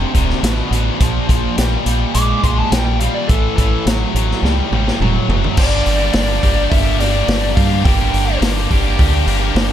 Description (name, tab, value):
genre	classic rock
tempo	105 BPM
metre	4/4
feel	straight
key	unclear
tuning	A4 = 440 Hz
part	cranked stack guitar	riff	0.0-9.7 s	D2 to G4	-22 LUFS	right 8 dB	overdrive
part	tight distorted guitar	riff	0.0-9.7 s	D2 to G4	-21 LUFS	left 11 dB	distortion
part	deep dub fingered electric bass	bass	0.0-9.7 s	D1 to G2	-18 LUFS	equal	none
part	vintage drum kit	drums	0.1-9.7 s	crash cymbal, hi-hat, kick drum, snare drum, toms	-18 LUFS	equal	none
part	dark smooth lead guitar	melody	2.1-8.4 s	A4 to D6	-22 LUFS	left 1 dB	overdrive, slapback echo
part	tonewheel organ	sustained chords	5.6-9.7 s	D4 to Bb4	-32 LUFS	right 2 dB	slow rotary speaker, overdrive, chorus vibrato
room	little or no reverb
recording	none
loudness	-13 LUFS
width	side -10 dB against mid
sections	0.0-5.6 A section; 5.6-9.7 B section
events	lead electric guitar solo 0.0-5.6; drum fill 4.4-5.6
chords	0.0 D5; 1.0 Bb5; 3.3 A5; 5.6 Gm